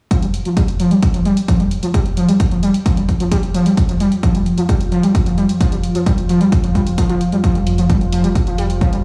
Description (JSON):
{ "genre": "driving peak-time techno", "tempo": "131 BPM", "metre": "4/4", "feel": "straight", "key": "unclear", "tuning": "A4 = 445 Hz", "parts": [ { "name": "overdriven synth lead", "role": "riff", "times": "0.1-9.0 s", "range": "F3 to G3", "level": "-19 LUFS", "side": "equal", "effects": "distortion, tube saturation, sidechain pumping, tape echo" }, { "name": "deep dark ambient pad", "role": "drone", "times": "1.9-9.0 s", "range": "F3 to F4", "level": "-26 LUFS", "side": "equal", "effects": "chorus, built-in reverb, sidechain pumping" }, { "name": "electronic hi-hat", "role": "drums", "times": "0.1-9.0 s", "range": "none", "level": "-35 LUFS", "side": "equal", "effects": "sidechain pumping on hats" }, { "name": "electronic kick drum", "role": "drums", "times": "0.1-8.9 s", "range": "none", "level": "-19 LUFS", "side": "equal", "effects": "none" }, { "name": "saturated sub bass", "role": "bass", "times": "7.7-8.8 s", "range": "F1", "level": "-22 LUFS", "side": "equal", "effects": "tube saturation, sidechain pumping, low-pass filter" } ], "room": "light reverb", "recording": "played on a big sound system in a bare room, stone room reverb, small room reverb", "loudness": "-16 LUFS", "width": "mono", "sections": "0.1-9.0 A section", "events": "filter sweep on analog synth lead 0.1-9.0", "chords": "0.1 Fsus2" }